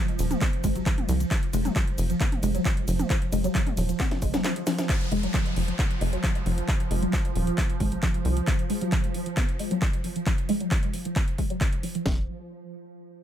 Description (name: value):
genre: driving peak-time techno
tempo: 134 BPM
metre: 4/4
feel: straight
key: F minor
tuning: A4 = 440 Hz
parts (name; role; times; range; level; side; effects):
- swarming drone; drone; 0.0-12.1 s; F3; -35 LUFS; right 3 dB; built-in reverb, sidechain pumping
- techno drum kit; drums; 0.1-12.0 s; handclaps, hi-hat, ride cymbal, shaker, snare drum, toms; -32 LUFS; equal; sidechain pumping on hats, sidechain pumping on perc, sidechain pumping on toms, sidechain pumping on cymbals
- woody wave-folded pluck; riff; 0.2-12.3 s; F3 to B3; -30 LUFS; equal; tube saturation, ensemble chorus, sidechain pumping, tape echo
- tight sequencer bass; bass; 0.2-8.4, 12.1-12.3 s; Eb1 to C2; -27 LUFS; equal; sidechain pumping
- techno drum kit; drums; 0.4-12.2 s; kick drum, snare drum; -26 LUFS; equal; none
- downlifter; sound effects; 4.9-8.5 s; none; -40 LUFS; equal; none
room: little or no reverb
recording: none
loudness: -23 LUFS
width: side -10 dB against mid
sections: 0.0-4.9 A section; 4.9-12.1 B section; 12.1-13.2 C section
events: drop 0.0-4.9; drum fill 4.0-4.9; filter sweep on synth arpeggio sound 4.9-12.1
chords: 0.0 F5; 12.1 N.C.